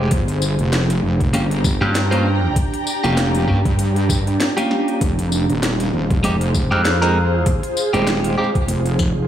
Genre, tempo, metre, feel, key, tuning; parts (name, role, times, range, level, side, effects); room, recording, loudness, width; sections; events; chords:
glitch hop; 98 BPM; 4/4; swing 56% on 16ths; F minor; A4 = 440 Hz
clean electric guitar; stabs; 0.0-8.5 s; Ab3 to C5; -22 LUFS; equal; tremolo, sidechain pumping, digital delay
wobble bass; bass; 0.0-9.3 s; Eb1 to G2; -19 LUFS; equal; chorus
ethereal airy pad; texture; 0.0-9.3 s; D4 to Bb5; -24 LUFS; right 1 dB; ensemble chorus, built-in reverb, sidechain pumping
drum and bass drum kit; drums; 0.1-9.1 s; hi-hat, snare drum, tambourine; -25 LUFS; left 1 dB; studio reverb
electronic kick drum; drums; 0.1-9.1 s; -20 LUFS; equal; studio reverb
gritty slap bass; bass; 1.8-2.7, 6.7-7.6 s; F2 to G2; -18 LUFS; equal; overdrive
light reverb, digital ambience; studio reverb; -16 LUFS; side -10 dB against mid
0.0-9.3 A section
0.1 Gm7b5; 5.0 Fm9